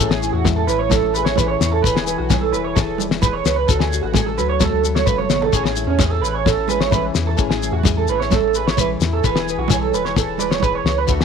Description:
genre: highlife guitar band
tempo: 130 BPM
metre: 4/4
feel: straight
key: A major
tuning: A4 = 440 Hz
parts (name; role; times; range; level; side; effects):
- nylon-string guitar; accompaniment; 0.0-11.2 s; A2 to D5; -24 LUFS; left 11 dB; none
- electric guitar through a small old amp; arpeggios; 0.0-11.2 s; C#4 to C#5; -20 LUFS; right 12 dB; analog chorus, tape echo
- pure sine sub bass; bass; 0.0-11.2 s; E1 to E2; -24 LUFS; left 1 dB; none
- shekere; percussion; 0.0-11.2 s; none; -23 LUFS; left 6 dB; none
- damped 70s drum kit; drums; 0.1-11.2 s; kick drum, snare drum; -20 LUFS; left 4 dB; none
- congas; percussion; 0.2-11.1 s; none; -27 LUFS; right 10 dB; none
room: light reverb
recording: 1960s-style stereo with parts hard left and right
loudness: -16 LUFS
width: side -6 dB against mid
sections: 0.0-11.2 A section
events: drum fill 4.9-5.5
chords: 0.0 Amaj7; 1.8 E; 3.7 D; 5.5 Amaj7; 9.2 E

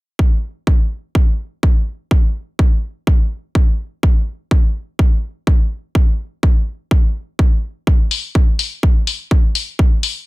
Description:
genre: house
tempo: 125 BPM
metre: 4/4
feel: straight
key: none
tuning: none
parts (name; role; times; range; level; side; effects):
- electronic kick drum; drums; 0.2-9.9 s; none; -13 LUFS; equal; none
- electronic hi-hat; drums; 8.1-10.1 s; none; -19 LUFS; left 7 dB; sidechain pumping on hats, low-pass filter on hats, low-pass filter on room
room: little or no reverb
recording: dense, heavily limited modern master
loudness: -14 LUFS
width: side -21 dB against mid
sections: 0.2-10.3 A section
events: none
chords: none

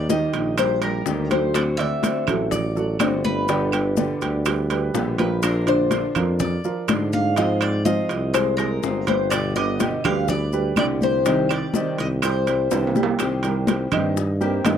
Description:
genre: latin, Cuban son and guajira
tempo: 124 BPM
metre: 4/4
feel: straight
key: C minor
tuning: A4 = 441 Hz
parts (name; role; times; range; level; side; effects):
- Cuban tres; melody; 0.0-12.9 s; Bb4 to F5; -25 LUFS; left 3 dB; none
- nylon-string guitar; accompaniment; 0.0-14.8 s; B2 to G4; -28 LUFS; left 4 dB; none
- warm tuba; bass; 0.0-14.8 s; G1 to Ab2; -24 LUFS; right 1 dB; none
- dark baby grand piano; arpeggios; 0.1-14.8 s; D3 to D6; -26 LUFS; right 4 dB; tape echo
- bongos; percussion; 0.1-14.8 s; none; -30 LUFS; left 9 dB; none
- congas; percussion; 0.1-14.8 s; none; -27 LUFS; left 1 dB; none
- maracas; percussion; 0.1-14.8 s; none; -38 LUFS; left 23 dB; none
- timbales; percussion; 0.3-14.8 s; none; -28 LUFS; right 8 dB; none
- claves; percussion; 0.6-14.8 s; none; -31 LUFS; right 23 dB; none
room: light reverb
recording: dry, close 1970s-style studio recording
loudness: -19 LUFS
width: side -8 dB against mid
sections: 0.0-13.2 A section; 13.2-14.8 B section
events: drum fill 12.7-13.2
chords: 0.0 Eb; 1.6 D7; 3.5 G; 5.4 Bb; 7.4 Fm; 9.3 G; 11.3 Cm7

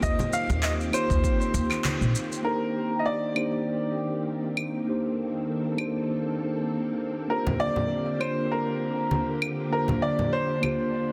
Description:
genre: sunset chillout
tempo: 99 BPM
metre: 4/4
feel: swing 55% on 16ths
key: C dorian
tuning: A4 = 440 Hz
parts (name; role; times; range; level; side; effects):
- clear baby grand piano; melody; 0.0-11.1 s; Bb4 to F5; -32 LUFS; equal; delay
- mellow tine electric piano; accompaniment; 0.0-11.1 s; Bb3 to C5; -32 LUFS; equal; delay
- soft string machine; sustained chords; 0.0-11.1 s; D3 to A4; -35 LUFS; equal; ensemble chorus
- upright bass; bass; 0.0-2.1 s; Bb1 to Eb2; -29 LUFS; equal; none
- electronic kick drum; drums; 0.0-1.4 s; none; -29 LUFS; equal; none
- electronic shaker, handclaps and claves; drums; 0.0-10.8 s; none; -34 LUFS; equal; none
- congas; percussion; 0.2-2.0, 7.5-10.8 s; none; -32 LUFS; equal; none
room: moderate plate reverb, RT60 2.3 s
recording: dense, heavily limited modern master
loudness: -27 LUFS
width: mono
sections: 0.0-2.5 A section; 2.5-11.1 B section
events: band accent 1.8-2.1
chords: 0.0 Eb6; 2.5 Cm7; 7.3 Bb69

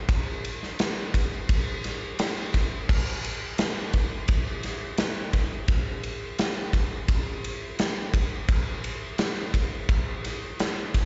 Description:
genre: rock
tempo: 86 BPM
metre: 4/4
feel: straight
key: none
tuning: none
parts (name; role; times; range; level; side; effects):
- big rock drum kit; drums; 0.1-11.1 s; crash cymbal, kick drum, ride cymbal, snare drum; -28 LUFS; equal; none
room: little or no reverb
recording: live gig heard through the venue's PA, recital hall reverb, nothing above 7.8 kHz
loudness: -28 LUFS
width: mono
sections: 0.0-11.1 A section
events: none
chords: none

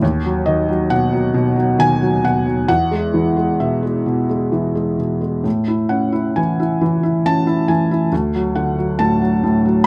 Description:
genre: classical, lyrical solo piano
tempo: 67 BPM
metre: 3/4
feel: uneven beats, rubato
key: A major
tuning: A4 = 440 Hz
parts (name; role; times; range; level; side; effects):
- felt-muted upright piano; solo; 0.0-9.9 s; D2 to A5; -17 LUFS; equal; none
room: moderate studio reverb, RT60 0.8 s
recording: none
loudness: -17 LUFS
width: mono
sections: 0.0-9.9 A section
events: none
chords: 0.0 B/D#; 2.7 E; 5.5 A; 8.1 D

